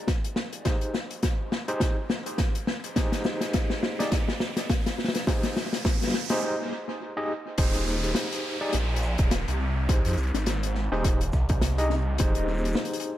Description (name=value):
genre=glitch hop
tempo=104 BPM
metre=4/4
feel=swing 57% on 16ths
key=F minor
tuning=A4 = 439 Hz
part: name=riser and downlifter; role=sound effects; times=0.2-12.2 s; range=none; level=-37 LUFS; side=right 1 dB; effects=none
part: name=electronic kick drum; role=drums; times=0.1-12.3 s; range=none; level=-26 LUFS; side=equal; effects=none
part: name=open jazz drum kit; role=drums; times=0.1-13.1 s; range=crash cymbal, hi-hat, shaker, snare drum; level=-30 LUFS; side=left 2 dB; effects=tape echo
part: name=overdriven tine electric piano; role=stabs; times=0.7-13.2 s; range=Eb4 to Eb5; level=-32 LUFS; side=equal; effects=fast tremolo, sidechain pumping, tape echo
part: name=phased detuned saw bass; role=bass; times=7.6-12.8 s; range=Eb1 to F2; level=-27 LUFS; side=equal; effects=phaser, overdrive
room=moderate spring reverb, RT60 2.6 s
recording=echo-heavy mix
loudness=-24 LUFS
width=side -13 dB against mid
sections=0.0-7.6 A section; 7.6-13.2 B section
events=build-up 0.0-7.6; drum fill 0.0-6.4; riser 0.2-6.4; break 6.4-7.6; drop 7.6-13.2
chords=0.0 Ebadd11; 7.6 Fm7